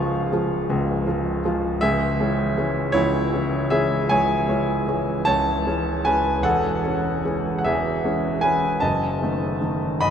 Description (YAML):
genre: classical, romantic nocturne for solo piano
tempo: 49-55 BPM (dotted quarters)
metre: 12/8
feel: rubato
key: C# minor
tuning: A4 = 439 Hz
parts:
  - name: clear grand piano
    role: solo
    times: 0.0-10.1 s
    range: Db1 to Db6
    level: -20 LUFS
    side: equal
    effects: none
room: wet cathedral reverb, RT60 6.7 s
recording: in a vast, echoing space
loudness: -20 LUFS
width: side -8 dB against mid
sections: 0.0-10.1 A section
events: none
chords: 0.0 Db; 1.8 C#m; 6.5 C#m/E; 8.8 D#dim/F#